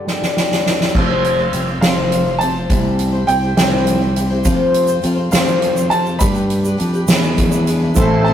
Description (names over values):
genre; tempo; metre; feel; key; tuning
indie folk with a building arrangement; 68 BPM (dotted quarters); 6/8; straight; unclear; A4 = 440 Hz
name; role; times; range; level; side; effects
clear upright piano; melody; 0.0-8.3 s; D5 to B5; -21 LUFS; right 3 dB; none
fingerpicked old ladder-braced acoustic guitar; accompaniment; 0.0-2.7 s; G2 to G4; -25 LUFS; left 5 dB; none
soft-mallet drum kit; drums; 0.1-8.3 s; crash cymbal, hi-hat, kick drum, ride cymbal, snare drum; -18 LUFS; right 1 dB; none
modern bright fingered electric bass; bass; 0.9-8.3 s; F1 to G2; -18 LUFS; equal; none
picked twelve-string acoustic guitar; accompaniment; 1.0-8.3 s; A2 to C5; -19 LUFS; left 3 dB; none
egg shaker; percussion; 4.4-8.1 s; none; -29 LUFS; right 7 dB; none
felt-muted upright piano; accompaniment; 8.0-8.3 s; A1 to E5; -19 LUFS; right 1 dB; none
pedal harmonium; sustained chords; 8.0-8.3 s; E4 to A5; -19 LUFS; equal; none
room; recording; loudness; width
moderate small room reverb, RT60 0.5 s; rough rehearsal-room recording; -13 LUFS; side -10 dB against mid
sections
0.9-8.0 A section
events
break 0.0-0.9; drum fill 0.1-0.9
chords
0.0 Gsus4; 0.9 Fsus2; 2.7 C; 4.5 Fsus2; 6.2 G; 7.1 E7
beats
0.07 | 0.94 1.82 | 2.70 3.58 | 4.45 5.33 | 6.20 7.08 | 7.96